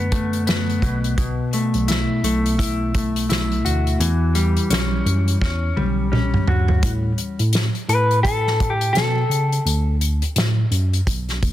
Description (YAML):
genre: indie pop, bedroom pop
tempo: 85 BPM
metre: 4/4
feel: swing 60% on 16ths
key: unclear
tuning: A4 = 440 Hz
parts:
  - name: clean electric guitar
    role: accompaniment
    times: 0.0-10.0 s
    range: B2 to B4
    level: -21 LUFS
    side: left 2 dB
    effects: wide subtle chorus, warbly pitch drift
  - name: tine electric piano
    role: bass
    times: 0.0-11.5 s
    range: B1 to C#3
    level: -21 LUFS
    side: equal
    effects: overdrive
  - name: unplugged drum kit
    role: drums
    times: 0.1-11.5 s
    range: hi-hat, kick drum, snare drum, toms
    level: -23 LUFS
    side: equal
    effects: none
room: light reverb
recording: dense, heavily limited modern master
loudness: -17 LUFS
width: side -13 dB against mid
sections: 0.0-6.8 A section; 6.8-11.5 B section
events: drum fill 5.4-6.8; clean electric guitar solo 6.8-11.5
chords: 0.0 D6; 0.8 B7sus4; 4.0 Em69; 6.8 A; 9.7 D6